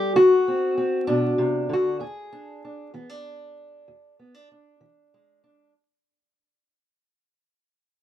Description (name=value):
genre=acoustic country blues, solo or duo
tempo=65 BPM (dotted quarters)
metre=12/8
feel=straight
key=unclear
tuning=A4 = 440 Hz
part: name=fingerpicked steel-string acoustic guitar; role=solo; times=0.0-5.7 s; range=E2 to G#4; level=-20 LUFS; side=left 1 dB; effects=none
room=small room ambience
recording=dry, close 1970s-style studio recording, vinyl crackle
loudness=-19 LUFS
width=side -12 dB against mid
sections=0.0-5.7 A section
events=fade-out 0.0-5.7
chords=0.2 D7; 2.0 E7